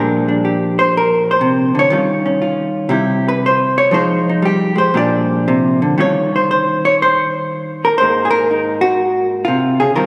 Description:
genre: solo jazz.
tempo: 120 BPM.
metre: 4/4.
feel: swing 68% on 8ths, rubato.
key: Eb mixolydian.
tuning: A4 = 441 Hz.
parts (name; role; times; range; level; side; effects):
vintage hollow-body jazz guitar; solo; 0.0-10.1 s; Ab2 to D5; -15 LUFS; equal; none.
room: wet church reverb, RT60 2.6 s.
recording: recorded in a church or concert hall.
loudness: -15 LUFS.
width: mono.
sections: 0.0-6.0 A section; 6.0-10.1 B section.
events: hollow-body jazz guitar solo 0.0-6.0.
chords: 0.0 Bb69; 1.9 Eb9; 2.9 C; 3.9 Fm7; 4.9 Bb69; 6.0 Eb13; 8.0 Ab13.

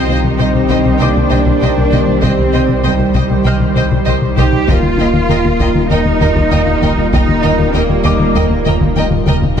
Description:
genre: cinematic, hybrid orchestral and electronic film score.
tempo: 98 BPM.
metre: 4/4.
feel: straight.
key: unclear.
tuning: A4 = 440 Hz.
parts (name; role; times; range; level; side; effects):
warm symphonic violin section; melody; 0.0-9.6 s; G5; -30 LUFS; left 4 dB; none.
rich studio violin section; second line; 0.0-9.4 s; Eb5; -24 LUFS; left 2 dB; none.
rich symphonic viola section; accompaniment; 0.0-9.4 s; Bb4 to C5; -24 LUFS; equal; none.
dark French horn section; sustained chords; 0.0-9.6 s; Eb3 to Eb4; -20 LUFS; left 4 dB; none.
lush unison pad; sustained chords; 0.0-9.6 s; Eb3 to C5; -19 LUFS; equal; chorus.
plucky analog bass; riff; 0.0-9.6 s; C2 to Eb3; -16 LUFS; left 3 dB; none.
rich symphonic cello section; bass; 0.0-9.6 s; G3 to G4; -18 LUFS; right 4 dB; none.
saturated sub bass; bass; 0.0-9.6 s; Eb1 to C2; -20 LUFS; equal; none.
warm symphonic double bass section; bass; 0.0-9.6 s; C2 to Eb2; -21 LUFS; right 4 dB; none.
bright grand piano; texture; 0.0-9.6 s; F4 to F6; -27 LUFS; left 4 dB; ping-pong delay.
taiko ensemble; drums; 0.7-9.6 s; none; -20 LUFS; equal; none.
room: moderate scoring stage reverb, RT60 1.6 s.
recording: none.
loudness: -10 LUFS.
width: side -8 dB against mid.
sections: 0.0-9.6 A section.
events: band accent 0.0-0.4; drum fill 9.0-9.6.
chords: 0.0 Cm; 4.7 Ebadd9.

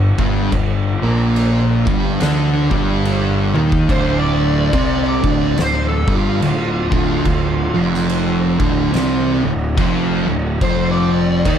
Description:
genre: stoner and doom metal.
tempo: 71 BPM.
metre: 4/4.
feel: swing 60% on 8ths.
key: D phrygian.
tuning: A4 = 439 Hz.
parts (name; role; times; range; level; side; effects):
thick fuzz guitar; riff; 0.0-11.6 s; D2 to Eb4; -20 LUFS; left 7 dB; distortion.
thick fuzz guitar; riff; 0.0-11.6 s; D2 to Eb4; -19 LUFS; right 8 dB; distortion.
fuzz picked electric bass; bass; 0.0-11.6 s; D1 to Eb2; -21 LUFS; equal; overdrive.
oversized low-tuned drum kit; drums; 0.2-11.6 s; crash cymbal, kick drum, snare drum, toms; -22 LUFS; equal; none.
fuzz lead guitar; melody; 3.9-11.6 s; F4 to D5; -22 LUFS; equal; wah, distortion, analog delay.
room: light reverb, small room ambience.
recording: dark, warm production.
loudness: -14 LUFS.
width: side -9 dB against mid.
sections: 0.0-3.9 A section; 3.9-11.6 B section.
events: drum fill 3.5-3.9; lead electric guitar solo 3.9-11.6.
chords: 0.0 G5; 3.9 Dm; 10.6 Ebmaj7sus2.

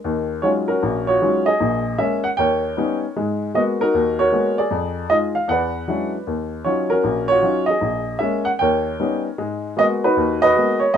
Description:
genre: solo jazz.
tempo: 154 BPM.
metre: 4/4.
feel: swing 65% on 8ths.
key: Eb minor.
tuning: A4 = 441 Hz.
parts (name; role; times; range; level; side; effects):
warm baby grand piano; solo; 0.0-11.0 s; Bb1 to G5; -17 LUFS; equal; none.
room: moderate studio reverb, RT60 0.5 s.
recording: minimal, uncompressed stereo recording.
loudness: -17 LUFS.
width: side -8 dB against mid.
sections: 0.0-11.0 A section.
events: none.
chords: 0.0 Ebm11; 1.6 Gb13/Bb (rootless); 2.4 Eb7b13; 3.2 Abm9; 4.7 Fm7; 5.5 E13; 6.3 Ebm9; 7.8 Gb13/Bb (rootless); 8.6 Eb7b13; 9.4 Abm9.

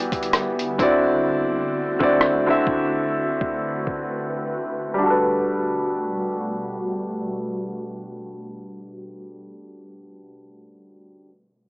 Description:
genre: contemporary R&B.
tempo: 64 BPM.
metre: 4/4.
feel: swing 58% on 16ths.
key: G major.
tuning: A4 = 437 Hz.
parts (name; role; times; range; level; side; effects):
clear grand piano; accompaniment; 0.0-11.3 s; D3 to E5; -22 LUFS; equal; cassette tape.
ethereal airy pad; sustained chords; 0.0-9.5 s; B2 to B4; -31 LUFS; equal; ensemble chorus, built-in reverb, sidechain pumping, cassette tape.
dusty soul sampler-style drum kit; drums; 0.1-4.1 s; hi-hat, kick drum, rim click; -24 LUFS; equal; cassette tape.
room: moderate booth ambience, RT60 0.2 s.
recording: home recording on cassette, low-pass filter, small speaker sound.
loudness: -20 LUFS.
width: side -33 dB against mid.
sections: 0.0-5.0 A section; 5.0-8.8 B section.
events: filter sweep 0.0-5.0; drums muted 4.1-5.0.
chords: 0.0 Em7; 0.8 D7; 5.0 Gmaj9.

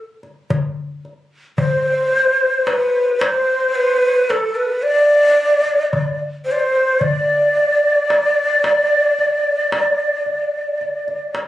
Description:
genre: Turkish makam ensemble.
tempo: 111 BPM (eighths).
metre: 10/8.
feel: straight.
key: unclear.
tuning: A4 = 440 Hz.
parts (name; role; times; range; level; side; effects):
darbuka; percussion; 0.2-11.5 s; none; -22 LUFS; left 2 dB; none.
breathy ney; melody; 1.6-11.3 s; A4 to D5; -15 LUFS; equal; none.
breathy shakuhachi; second line; 1.6-11.3 s; A4 to D5; -21 LUFS; right 2 dB; none.
room: moderate studio reverb, RT60 0.7 s.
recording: recorded on a phone in the room, club reverb, lossy compression artefacts.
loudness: -14 LUFS.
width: side -14 dB against mid.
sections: 0.0-11.5 A section.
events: none.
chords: none.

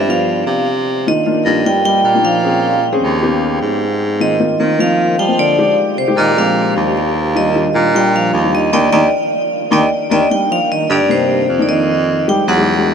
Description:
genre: jazz.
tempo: 152 BPM.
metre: 4/4.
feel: straight.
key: Eb major.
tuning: A4 = 440 Hz.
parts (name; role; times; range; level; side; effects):
warm baritone saxophone; bass; 0.0-12.9 s; Eb2 to F3; -17 LUFS; right 1 dB; none.
vibraphone with medium hard mallets; melody; 0.1-12.8 s; C5 to G5; -16 LUFS; right 1 dB; none.
breathy trombone; second line; 0.1-12.8 s; C3 to G3; -22 LUFS; right 4 dB; none.
dark upright piano; accompaniment; 0.1-12.9 s; G3 to Ab4; -18 LUFS; left 3 dB; none.
room: wet huge ambient reverb, RT60 7.8 s.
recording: dreamy mix soaked in reverb.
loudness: -12 LUFS.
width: side -7 dB against mid.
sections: 0.0-10.3 A section; 10.3-12.9 B section.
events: band accent 8.7-10.3.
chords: 0.1 G7; 0.9 Cm11; 2.4 Bbm7; 3.2 Ebaug7; 4.0 Ab69; 5.6 Fm7; 6.4 Bb13; 7.2 Ebmaj9; 10.3 Cm9; 11.9 Fm9.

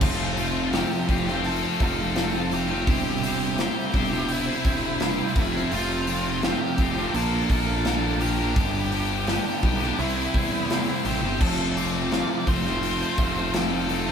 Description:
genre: quiet-loud alternative rock.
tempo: 84 BPM.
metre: 4/4.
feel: straight.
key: unclear.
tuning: A4 = 440 Hz.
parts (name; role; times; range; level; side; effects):
nasal lead guitar with a parked wah; melody; 0.0-14.1 s; E4 to D6; -31 LUFS; equal; overdrive.
high-gain distorted guitar; riff; 0.0-14.1 s; F2 to C5; -29 LUFS; left 7 dB; distortion.
thick fuzz guitar; riff; 0.0-14.1 s; F2 to C5; -28 LUFS; right 3 dB; distortion.
fuzz picked electric bass; bass; 0.0-14.1 s; E1 to E2; -30 LUFS; equal; overdrive.
big rock drum kit; drums; 0.0-14.1 s; crash cymbal, hi-hat, kick drum, snare drum; -27 LUFS; equal; none.
room: moderate small room reverb, RT60 0.5 s.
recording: band playing live in one room.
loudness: -22 LUFS.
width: side -7 dB against mid.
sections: 0.0-14.1 A section.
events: none.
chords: 0.0 F; 2.9 C/E; 5.4 F; 7.1 Bb; 8.6 G; 10.0 C; 11.4 F6.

